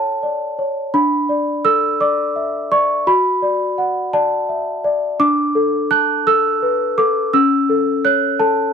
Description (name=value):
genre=classical, lullaby for celesta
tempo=56 BPM (dotted quarters)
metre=6/8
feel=straight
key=D major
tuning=A4 = 440 Hz
part: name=worn celesta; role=solo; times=0.0-8.7 s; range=C#4 to F#6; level=-15 LUFS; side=equal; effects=none
room=little or no reverb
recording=dry, close 1970s-style studio recording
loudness=-15 LUFS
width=side -6 dB against mid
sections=0.0-8.7 A section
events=none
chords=0.0 A7; 0.9 D5; 3.1 D/F#; 5.2 D5; 7.3 A/C#